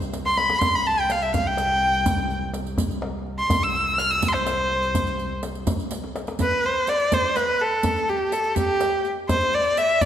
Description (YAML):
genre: Persian modal ensemble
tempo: 83 BPM (dotted quarters)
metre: 6/8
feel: straight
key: C dastgah mahur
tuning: A4 = 440 Hz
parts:
  - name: rich double bass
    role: drone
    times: 0.0-6.4 s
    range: C2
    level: -31 LUFS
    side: equal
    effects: none
  - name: riq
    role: percussion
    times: 0.0-10.1 s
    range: none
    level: -32 LUFS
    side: right 5 dB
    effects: none
  - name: tombak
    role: percussion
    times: 0.0-10.1 s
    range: none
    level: -28 LUFS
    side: left 1 dB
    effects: none
  - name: clear erhu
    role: melody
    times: 0.3-10.1 s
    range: G4 to F6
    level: -21 LUFS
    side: equal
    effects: none
room: wet scoring stage reverb, RT60 1.5 s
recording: none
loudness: -20 LUFS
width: side -10 dB against mid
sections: 0.0-6.4 A section; 6.4-10.1 B section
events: drum fill 0.1-0.6, 5.9-6.4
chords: none